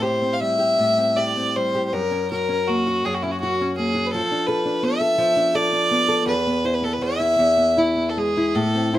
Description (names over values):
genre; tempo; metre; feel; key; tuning
celtic folk, Celtic slow air; 77-85 BPM; 3/4; rubato; unclear; A4 = 440 Hz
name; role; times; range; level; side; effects
rich fiddle; melody; 0.0-9.0 s; E4 to F5; -20 LUFS; equal; none
nylon-string guitar; accompaniment; 0.0-9.0 s; E2 to A4; -23 LUFS; left 1 dB; none
room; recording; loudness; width
moderate studio reverb, RT60 0.5 s; band playing live in one room; -18 LUFS; side -13 dB against mid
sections
0.0-9.0 A section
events
none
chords
0.0 Am7; 1.9 F#; 4.1 Bm7b5; 6.3 E5; 7.0 E